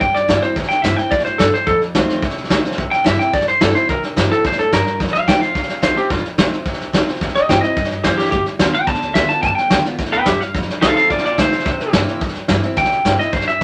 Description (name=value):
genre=rockabilly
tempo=216 BPM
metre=4/4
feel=straight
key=C mixolydian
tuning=A4 = 440 Hz
part: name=electric guitar through a small old amp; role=melody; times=0.0-13.6 s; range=F4 to A5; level=-19 LUFS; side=equal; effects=none
part: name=picked steel-string acoustic guitar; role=accompaniment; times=0.0-13.6 s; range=F2 to F4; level=-25 LUFS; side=equal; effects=none
part: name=upright bass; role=bass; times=0.0-13.6 s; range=E1 to G2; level=-28 LUFS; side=equal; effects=none
part: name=vintage brush drum kit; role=drums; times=0.0-13.6 s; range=hi-hat, kick drum, snare drum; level=-21 LUFS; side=equal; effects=none
room=moderate studio reverb, RT60 0.5 s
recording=none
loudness=-17 LUFS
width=mono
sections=0.6-13.6 A section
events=none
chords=0.0 C7; 0.6 C; 1.7 F7; 2.8 C7; 5.0 F7; 7.2 C7; 8.3 G7; 10.5 F7; 11.7 C7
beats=0.01 0.29 | 0.56 0.84 1.12 1.40 | 1.67 1.95 2.23 2.50 | 2.78 3.06 3.34 3.61 | 3.89 4.17 4.45 4.72 | 5.00 5.28 5.55 5.83 | 6.11 6.38 6.66 6.94 | 7.22 7.49 7.77 8.05 | 8.33 8.60 8.88 9.16 | 9.44 9.71 9.99 10.27 | 10.55 10.83 11.11 11.38 | 11.66 11.94 12.22 12.50 | 12.78 13.06 13.34 13.62